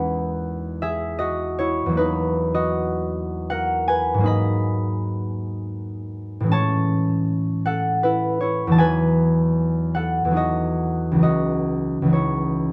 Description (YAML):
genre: classical, solo harp piece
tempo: 66-81 BPM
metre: 3/4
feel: rubato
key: unclear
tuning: A4 = 440 Hz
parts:
  - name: concert harp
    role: solo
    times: 0.0-12.7 s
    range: C#2 to B5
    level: -22 LUFS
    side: equal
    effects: none
room: light reverb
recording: close, detailed microphones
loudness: -22 LUFS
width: mono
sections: 0.0-12.7 A section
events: none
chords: 0.0 Emaj9; 4.3 G#m9; 6.5 Amaj7; 8.8 Emaj9; 11.2 C#m11